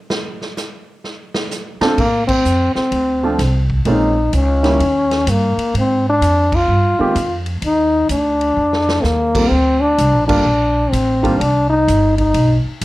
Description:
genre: jazz, small-group swing and bop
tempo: 127 BPM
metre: 4/4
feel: swing 66% on 8ths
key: unclear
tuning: A4 = 440 Hz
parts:
  - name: swinging big-band drum kit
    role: drums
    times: 0.1-12.8 s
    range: crash cymbal, hi-hat, kick drum, ride cymbal, snare drum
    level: -25 LUFS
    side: right 1 dB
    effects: none
  - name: warm upright piano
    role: accompaniment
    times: 1.8-11.4 s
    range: D3 to A4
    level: -18 LUFS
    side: right 2 dB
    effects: none
  - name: upright bass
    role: bass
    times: 1.8-12.8 s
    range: G1 to A2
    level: -18 LUFS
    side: right 1 dB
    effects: none
  - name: warm trombone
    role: melody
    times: 2.0-12.6 s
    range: A3 to F4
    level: -15 LUFS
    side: left 1 dB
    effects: none
room: light reverb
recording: worn, warbling old tape, cassette tape, warbly pitch drift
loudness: -13 LUFS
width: side -17 dB against mid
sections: 0.0-2.0 A section; 2.0-12.8 B section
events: drum solo 0.0-2.0; band accent 2.2, 6.5, 10.2; drum fill 8.6-9.0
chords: 0.0 N.C.; 2.0 Dm7; 3.9 Bbm7; 4.8 Eb7; 5.7 Abmaj7(no3); 7.6 N.C.; 8.6 F5; 9.5 Bb69; 10.5 Gm9; 11.4 Cm; 12.3 Abm (rootless)

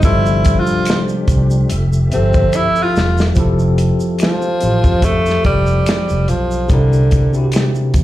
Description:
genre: R&B, neo-soul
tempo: 72 BPM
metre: 4/4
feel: swing 54% on 16ths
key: F major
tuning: A4 = 442 Hz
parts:
  - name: breathy tenor saxophone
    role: melody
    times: 0.0-7.5 s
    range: D3 to F4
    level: -18 LUFS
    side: equal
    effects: plate reverb, slapback echo
  - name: tine electric piano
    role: accompaniment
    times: 0.0-8.0 s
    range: C3 to E5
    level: -18 LUFS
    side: equal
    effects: medium stereo tremolo, slapback echo
  - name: tonewheel organ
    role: sustained chords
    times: 0.0-3.3 s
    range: C3 to E5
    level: -27 LUFS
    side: equal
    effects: slow rotary speaker, chorus vibrato
  - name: mellow fretless electric bass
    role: bass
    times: 0.0-8.0 s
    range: E1 to F2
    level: -15 LUFS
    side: equal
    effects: none
  - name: warm soul drum kit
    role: drums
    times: 0.0-8.0 s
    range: hi-hat, kick drum, snare drum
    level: -16 LUFS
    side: equal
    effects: none
  - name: tube shaker and finger snaps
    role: percussion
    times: 0.0-8.0 s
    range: none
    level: -34 LUFS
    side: equal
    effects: none
room: light reverb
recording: live gig heard through the venue's PA, club reverb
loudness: -12 LUFS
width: side -14 dB against mid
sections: 0.0-3.4 A section; 3.4-8.0 B section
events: tenor saxophone solo 0.0-3.4; drum fill 2.5-3.4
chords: 0.0 G7sus4; 1.7 Fmaj9; 3.4 Fmaj7; 6.7 C9

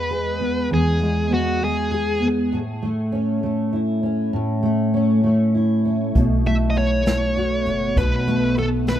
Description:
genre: six-eight pop ballad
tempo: 66 BPM (dotted quarters)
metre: 6/8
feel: straight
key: E major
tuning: A4 = 440 Hz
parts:
  - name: high-gain lead guitar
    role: melody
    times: 0.0-2.3, 6.5-9.0 s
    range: F#4 to E5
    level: -24 LUFS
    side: equal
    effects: distortion, plate reverb, tape echo
  - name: fingerpicked steel-string acoustic guitar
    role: accompaniment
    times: 0.0-9.0 s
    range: E2 to G#4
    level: -20 LUFS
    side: equal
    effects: double-tracked left and right, plate reverb
  - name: upright bass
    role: bass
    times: 6.2-9.0 s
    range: F#1 to B1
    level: -23 LUFS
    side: equal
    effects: none
  - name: jazz brush drum kit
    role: drums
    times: 6.2-9.0 s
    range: hi-hat, kick drum, snare drum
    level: -22 LUFS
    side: equal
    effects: none
room: moderate small room reverb, RT60 0.5 s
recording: rough home demo mix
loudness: -18 LUFS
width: side -11 dB against mid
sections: 0.0-9.0 A section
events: none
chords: 0.0 E; 2.5 A; 6.2 B5

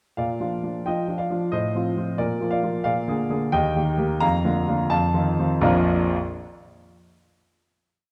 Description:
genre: classical-period piano sonatina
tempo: 82-91 BPM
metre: 2/4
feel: straight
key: Bb major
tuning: A4 = 440 Hz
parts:
  - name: clear baby grand piano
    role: solo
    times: 0.2-6.2 s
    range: Bb1 to Bb5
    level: -23 LUFS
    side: equal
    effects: none
room: wet recital hall reverb, RT60 1.7 s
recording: dark, warm production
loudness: -23 LUFS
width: mono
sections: 0.2-5.6 A section; 5.6-7.0 final chord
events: none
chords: 0.2 Bb; 1.5 F7/A; 2.2 Bb; 2.9 Bb7; 3.5 Eb; 4.2 Bb/F; 4.9 F7; 5.6 Bb

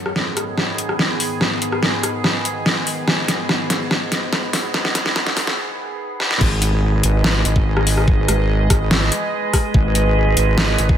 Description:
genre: heavy wobble dubstep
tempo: 144 BPM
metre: 4/4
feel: half-time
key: G# minor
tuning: A4 = 441 Hz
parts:
  - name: evolving wavetable pad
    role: sustained chords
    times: 0.0-11.0 s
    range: G#2 to D#5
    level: -23 LUFS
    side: right 2 dB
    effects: phaser, built-in reverb, sidechain pumping
  - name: dubstep drum kit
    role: drums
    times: 0.1-10.9 s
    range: crash cymbal, hi-hat, rim click, snare drum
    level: -19 LUFS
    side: equal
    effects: overdrive
  - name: wobble bass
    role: bass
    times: 6.4-11.0 s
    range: G#1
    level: -17 LUFS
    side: equal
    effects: chorus, overdrive
  - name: electronic kick drum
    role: drums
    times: 6.4-11.0 s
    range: none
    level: -16 LUFS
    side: equal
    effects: none
room: light reverb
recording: high-pass filter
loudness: -16 LUFS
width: side -10 dB against mid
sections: 0.0-6.4 A section; 6.4-11.0 B section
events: build-up 0.0-6.4; drum fill 0.0-5.6, 6.2; break 5.6-6.4; drop 6.4-11.0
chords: 0.0 G#m

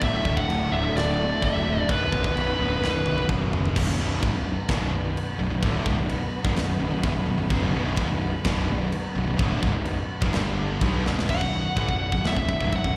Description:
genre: heavy metal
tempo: 128 BPM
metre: 4/4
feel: straight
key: B minor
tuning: A4 = 440 Hz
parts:
  - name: high-gain lead guitar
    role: melody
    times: 0.0-3.3, 11.3-13.0 s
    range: B4 to F#5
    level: -29 LUFS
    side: equal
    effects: distortion, slapback echo, digital delay
  - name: bright studio string section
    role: sustained chords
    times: 0.0-11.3 s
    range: D3 to B4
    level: -36 LUFS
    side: equal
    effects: none
  - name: distorted electric guitar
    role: riff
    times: 0.0-13.0 s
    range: B1 to B3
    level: -36 LUFS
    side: equal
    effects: none
  - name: overdriven electric guitar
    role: riff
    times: 0.0-13.0 s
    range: B1 to B3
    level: -37 LUFS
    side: equal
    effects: none
  - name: tight distorted guitar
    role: riff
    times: 0.0-13.0 s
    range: B1 to B3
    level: -35 LUFS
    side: equal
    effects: distortion, slapback echo
  - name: fuzz picked electric bass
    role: bass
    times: 0.0-13.0 s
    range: B0 to B1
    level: -29 LUFS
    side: equal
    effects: overdrive
  - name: tight metal drum kit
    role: drums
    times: 0.0-13.0 s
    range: china cymbal, crash cymbal, kick drum, snare drum, toms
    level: -31 LUFS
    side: equal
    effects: none
room: little or no reverb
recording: live gig heard through the venue's PA, recital hall reverb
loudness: -25 LUFS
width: mono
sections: 0.0-3.8 A section; 3.8-11.3 B section; 11.3-13.0 C section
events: drum fill 2.8-3.8, 11.1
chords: 0.0 D; 1.9 Bm; 10.3 G5; 10.8 Bm

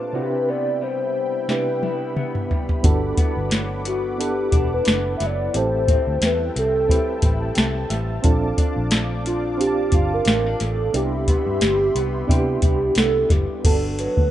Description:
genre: indie pop, bedroom pop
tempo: 89 BPM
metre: 4/4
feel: swing 55% on 16ths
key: unclear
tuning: A4 = 440 Hz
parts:
  - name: hollow clarinet-like synth lead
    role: melody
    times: 0.0-14.3 s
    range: F4 to E5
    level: -23 LUFS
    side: equal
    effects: wide subtle chorus
  - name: electric guitar through a small old amp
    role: accompaniment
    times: 0.0-14.3 s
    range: A2 to F4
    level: -31 LUFS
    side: left 4 dB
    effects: lush chorus, vibrato effect
  - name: soft electric-piano-like synth keys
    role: accompaniment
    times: 0.0-14.3 s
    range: Bb2 to A5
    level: -27 LUFS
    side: right 4 dB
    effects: chorus, tremolo, cassette tape
  - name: warm analog pad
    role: sustained chords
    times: 0.0-13.6 s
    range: A3 to D6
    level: -34 LUFS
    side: equal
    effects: chorus
  - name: soft vintage rhythm box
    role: drums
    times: 1.5-14.3 s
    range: crash cymbal, hi-hat, kick drum, snare drum, toms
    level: -20 LUFS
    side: equal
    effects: none
  - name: vintage muted fingered electric bass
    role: bass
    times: 2.8-14.3 s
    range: E1 to C3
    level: -25 LUFS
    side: equal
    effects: none
room: little or no reverb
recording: rough home demo mix, nothing above 11.0 kHz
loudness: -18 LUFS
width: side -12 dB against mid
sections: 0.0-13.6 A section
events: drum fill 1.5-2.8; synth keys fill 7.2-8.2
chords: 0.1 Cmaj7; 2.8 Gmaj7; 5.5 Am7; 8.2 Bbmaj7; 10.9 Cmaj7; 13.6 Gmaj7

